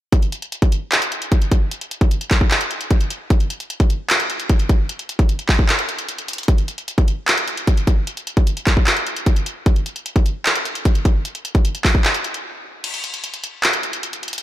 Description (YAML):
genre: hip hop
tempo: 151 BPM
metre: 4/4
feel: half-time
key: none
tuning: none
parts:
  - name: trap drum kit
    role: drums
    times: 0.1-14.4 s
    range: crash cymbal, handclaps, hi-hat, kick drum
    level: -16 LUFS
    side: equal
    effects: none
room: light reverb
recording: blown-out, overdriven recording, overdrive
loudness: -16 LUFS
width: side -14 dB against mid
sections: 0.1-12.8 A section; 12.8-14.4 B section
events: break 5.7-6.5, 12.4-12.8, 12.8-14.4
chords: none